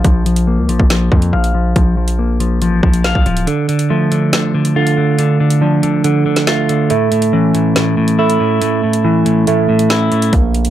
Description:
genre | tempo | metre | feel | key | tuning
hip hop, drill | 140 BPM | 4/4 | half-time | unclear | A4 = 440 Hz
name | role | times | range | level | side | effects
clean electric guitar | accompaniment | 0.0-10.3 s | A2 to F5 | -15 LUFS | left 4 dB | low-pass filter
distorted 808-style bass | bass | 0.0-3.5, 10.3-10.7 s | D1 to F2 | -16 LUFS | equal | distortion
drill drum kit | drums | 0.0-10.7 s | hi-hat, kick drum, snare drum | -16 LUFS | equal | none
overdriven tine electric piano | arpeggios | 3.5-10.7 s | D3 to E4 | -14 LUFS | right 5 dB | low-pass filter, digital delay
room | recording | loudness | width
little or no reverb | dark, warm production | -11 LUFS | side -12 dB against mid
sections
0.0-10.7 A section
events
filter sweep 0.0-3.5; kick muted 3.5-10.3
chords
0.0 Bb5; 3.5 Dm; 6.9 A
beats
| 0.04 0.47 0.90 1.33 | 1.76 2.19 2.62 3.04 | 3.47 3.90 4.33 4.76 | 5.19 5.62 6.04 6.47 | 6.90 7.33 7.76 8.19 | 8.62 9.04 9.47 9.90 | 10.33

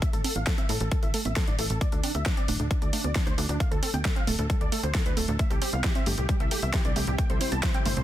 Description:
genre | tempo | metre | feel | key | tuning
uplifting trance | 134 BPM | 4/4 | straight | unclear | A4 = 443 Hz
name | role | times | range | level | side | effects
dense compressed supersaw | melody | 0.0-8.0 s | D4 to A5 | -34 LUFS | equal | sidechain pumping, low-pass filter, tape echo
wide unison pluck | arpeggios | 0.0-8.0 s | A2 to A4 | -34 LUFS | right 4 dB | sidechain pumping, ping-pong delay
big-room dance drum kit | drums | 0.0-8.0 s | hi-hat, snare drum | -32 LUFS | equal | overdrive, studio reverb
electronic kick drum | drums | 0.0-7.7 s | none | -26 LUFS | equal | overdrive, studio reverb
tight sequencer bass | bass | 0.1-8.0 s | D1 to A2 | -29 LUFS | equal | sidechain pumping
shimmering ambient pad | sustained chords | 6.4-8.0 s | C3 to A4 | -36 LUFS | left 2 dB | chorus, built-in reverb, phaser, sidechain pumping
room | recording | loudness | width
little or no reverb | dense, heavily limited modern master | -24 LUFS | side -13 dB against mid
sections
0.0-8.0 A section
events
filter sweep on synth arpeggio sound 0.0-8.0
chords
0.0 A5; 1.8 D5; 5.4 C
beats
| 0.02 0.47 0.92 1.36 | 1.81 2.26 2.71 3.15 | 3.60 4.05 4.50 4.95 | 5.39 5.84 6.29 6.74 | 7.18 7.63

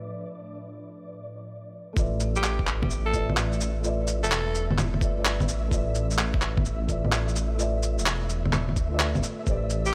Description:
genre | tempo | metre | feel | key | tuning
future garage | 128 BPM | 4/4 | swing 67% on 16ths | unclear | A4 = 440 Hz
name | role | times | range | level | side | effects
felt-muted upright piano | accompaniment | 0.0-9.9 s | A3 to E5 | -36 LUFS | equal | sidechain pumping, digital delay
ethereal airy pad | sustained chords | 0.0-1.5, 9.5-9.9 s | A2 to E5 | -44 LUFS | equal | ensemble chorus, built-in reverb, phaser, sidechain pumping
flickering grainy texture | texture | 0.0-9.9 s | D5 to E5 | -45 LUFS | equal | built-in reverb
dark detuned saw bass | bass | 2.0-9.9 s | E1 to D2 | -30 LUFS | equal | tube saturation, sidechain pumping
electronic kick drum | drums | 2.0-9.6 s | none | -30 LUFS | equal | overdrive, studio reverb
electronic shaker, cabasa, handclaps and bongos | drums | 2.0-9.9 s | none | -30 LUFS | equal | overdrive, studio reverb
growling alto saxophone | melody | 2.4-4.7, 9.9 s | G4 to A4 | -33 LUFS | equal | digital delay
room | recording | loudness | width
light reverb | low-pass filter | -26 LUFS | mono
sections
0.0-2.0 A section; 2.0-9.9 B section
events
filter sweep on felt piano 0.0-2.0; filter sweep 0.0-2.0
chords
0.0 G13/A (rootless); 2.0 G13 (rootless)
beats
| 0.09 0.56 1.03 1.50 | 1.97 2.44 2.91 3.38 | 3.84 4.31 4.78 5.25 | 5.72 6.19 6.66 7.12 | 7.59 8.06 8.53 9.00 | 9.47 9.94

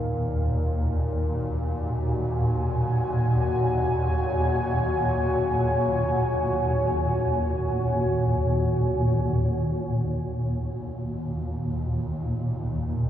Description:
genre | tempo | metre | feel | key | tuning
dark ambient drone | free time | none | none | Eb minor | A4 = 443 Hz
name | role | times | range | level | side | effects
deep dark ambient pad | sustained chords | 0.0-13.1 s | Eb4 to Ab5 | -28 LUFS | left 1 dB | chorus, built-in reverb
swarming drone | drone | 0.0-13.1 s | Eb2 to Bb2 | -24 LUFS | equal | built-in reverb
room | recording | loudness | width
wet huge ambient reverb, RT60 8.0 s | none | -23 LUFS | side -10 dB against mid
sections
0.0-9.3 A section; 9.3-13.1 B section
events
none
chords
0.0 Ebm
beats
free time

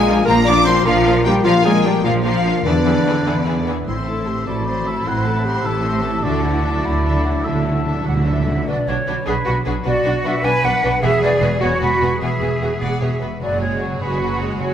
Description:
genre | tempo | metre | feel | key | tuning
cinematic, heroic adventure film score | 101 BPM (dotted quarters) | 6/8 | straight | unclear | A4 = 440 Hz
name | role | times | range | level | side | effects
rich symphonic violin section | melody | 0.0-14.7 s | G#4 to D6 | -27 LUFS | left 3 dB | none
concert flute | second line | 0.0-14.7 s | B4 to D6 | -23 LUFS | equal | none
warm clarinet | second line | 0.0-8.5 s | D4 to D5 | -24 LUFS | left 2 dB | none
dark French horn section | sustained chords | 0.0-8.5 s | F#3 to B4 | -25 LUFS | left 5 dB | none
concert harp | arpeggios | 0.0-14.7 s | E2 to C#6 | -26 LUFS | left 7 dB | none
clear symphonic cello section | bass | 0.0-14.7 s | A2 to B4 | -22 LUFS | right 2 dB | none
warm symphonic double bass section | bass | 0.0-14.7 s | E1 to E2 | -22 LUFS | right 3 dB | none
clear symphonic violin section | second line | 0.1-14.7 s | D4 to C5 | -31 LUFS | left 1 dB | none
clear symphonic viola section | accompaniment | 0.1-14.7 s | E3 to E4 | -28 LUFS | right 1 dB | none
warm oboe | second line | 3.9-8.5 s | D5 to F#5 | -27 LUFS | left 2 dB | none
timpani | percussion | 6.2-8.6 s | D3 | -26 LUFS | right 2 dB | none
room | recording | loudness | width
moderate scoring stage reverb, RT60 1.9 s | none | -15 LUFS | side -9 dB against mid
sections
0.0-3.9 A section; 3.9-8.7 B section; 8.7-14.7 C section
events
timpani fill 6.2-8.7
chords
0.0 Bb; 2.7 E7; 3.9 Am; 6.2 Dadd9; 8.7 Bm; 11.0 Eadd9; 13.4 F#sus2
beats
| 0.28 0.86 | 1.46 2.05 | 2.66 3.27 | 3.88 4.47 | 5.06 5.65 | 6.24 6.84 | 7.45 8.06 | 8.67 9.26 | 9.85 10.44 | 11.02 11.61 | 12.21 12.81 | 13.41 14.01 | 14.60

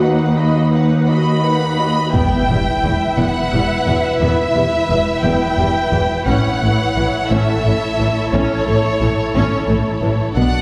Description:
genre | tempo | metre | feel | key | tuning
cinematic | 58 BPM (dotted quarters) | 6/8 | straight | A mixolydian | A4 = 441 Hz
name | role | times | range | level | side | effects
warm symphonic violin section | second line | 0.0-10.6 s | F#4 to Cb6 | -25 LUFS | equal | none
dark symphonic viola section | accompaniment | 0.0-10.6 s | E3 to Eb5 | -24 LUFS | equal | none
mellow French horn section | sustained chords | 0.0-1.1 s | Eb4 | -24 LUFS | equal | none
rich symphonic cello section | bass | 0.0-10.5 s | Eb2 to B2 | -22 LUFS | equal | none
warm symphonic violin section | melody | 1.1-10.6 s | C#5 to Cb6 | -23 LUFS | equal | none
warm studio double bass section | bass | 2.1-10.4 s | E1 to B1 | -22 LUFS | equal | none
impact | sound effects | 2.1-4.2 s | none | -27 LUFS | equal | none
room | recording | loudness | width
wet scoring stage reverb, RT60 1.7 s | heard from further back in the room | -16 LUFS | mono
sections
0.0-2.1 A section; 2.1-10.6 B section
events
impact 2.1-4.2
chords
0.0 Cb/Eb; 2.1 Em; 6.3 A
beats
| 0.01 1.09 | 2.14 3.18 | 4.21 5.24 | 6.27 7.30 | 8.32 9.34 | 10.37

